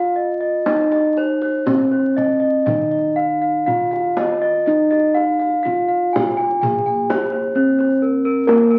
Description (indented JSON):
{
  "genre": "Javanese gamelan",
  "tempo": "60-67 BPM",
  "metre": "4/4",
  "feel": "straight",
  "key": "Bb slendro",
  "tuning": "A4 = 439 Hz",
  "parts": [
    { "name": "gamelan-type bronze metallophone", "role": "melody", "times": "0.0-8.8 s", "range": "Bb3 to Ab4-40c", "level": "-22 LUFS", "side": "equal", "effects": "none" },
    { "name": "gamelan-type bronze metallophone", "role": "arpeggios", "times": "0.0-8.8 s", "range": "Bb4 to Ab5-40c", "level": "-21 LUFS", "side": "equal", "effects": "none" },
    { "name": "gamelan-type bossed gongs", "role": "bass", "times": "0.0-8.8 s", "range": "Bb1 to Bb4", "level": "-26 LUFS", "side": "equal", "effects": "none" },
    { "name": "kendang", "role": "percussion", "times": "0.7-8.8 s", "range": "none", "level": "-29 LUFS", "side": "equal", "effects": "none" }
  ],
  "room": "wet club reverb, RT60 0.8 s",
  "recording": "very old 78 rpm record, vinyl crackle",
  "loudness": "-18 LUFS",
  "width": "mono",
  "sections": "0.0-8.8 A section",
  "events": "none",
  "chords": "none",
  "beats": "| 0.66 1.66 2.67 3.67 | 4.67 5.66 6.62 7.56 | 8.47"
}